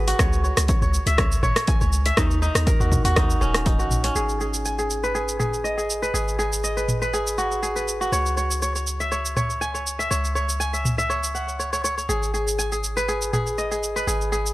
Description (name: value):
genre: afro house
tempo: 121 BPM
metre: 4/4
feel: swing 54% on 16ths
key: G# minor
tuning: A4 = 441 Hz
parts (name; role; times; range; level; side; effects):
- kora; arpeggios; 0.0-14.5 s; C#4 to G#5; -24 LUFS; equal; sidechain pumping, low-pass filter, tape echo
- warm 808-style bass; bass; 0.0-14.5 s; D#1 to D#2; -26 LUFS; equal; sidechain pumping
- house drum kit; drums; 0.1-14.5 s; cabasa, hi-hat, rim click, toms; -26 LUFS; equal; none
- electronic kick drum; drums; 0.2-3.8 s; none; -22 LUFS; equal; none
room: little or no reverb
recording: dry, gritty hardware recording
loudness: -20 LUFS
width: side -17 dB against mid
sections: 0.0-4.2 A section; 4.2-14.5 B section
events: none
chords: 0.2 C#m; 2.2 D#m7; 4.2 G#m; 8.1 C#m; 12.1 G#m